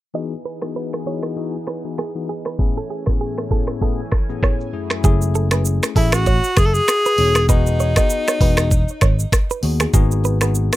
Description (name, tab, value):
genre	afrobeats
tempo	98 BPM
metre	4/4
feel	swing 58% on 16ths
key	E major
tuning	A4 = 438 Hz
part	bell-like tine electric piano	accompaniment	0.1-10.8 s	F#2 to G#4	-25 LUFS	left 8 dB	none
part	lush unison pad	sustained chords	0.1-5.0 s	E3 to G#5	-32 LUFS	equal	chorus
part	direct-recorded clean electric guitar	riff	0.1-10.5 s	G#4 to D#5	-27 LUFS	right 7 dB	digital delay
part	afro-pop drum kit	drums	0.1-10.8 s	finger snaps, hi-hat, kick drum, rim click, shaker	-18 LUFS	equal	none
part	fingered electric bass	bass	5.0-10.7 s	E1 to D#2	-18 LUFS	equal	none
part	breathy tenor saxophone	melody	6.0-9.3 s	D#4 to A4	-19 LUFS	left 1 dB	digital delay
room	little or no reverb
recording	rough home demo mix, low-pass filter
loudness	-16 LUFS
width	side -16 dB against mid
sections	0.1-5.0 A section; 5.0-10.8 B section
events	filter sweep 0.1-5.0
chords	0.1 Emaj7; 2.6 Amaj7; 4.7 F#m9; 7.2 Emaj9; 9.9 G#m7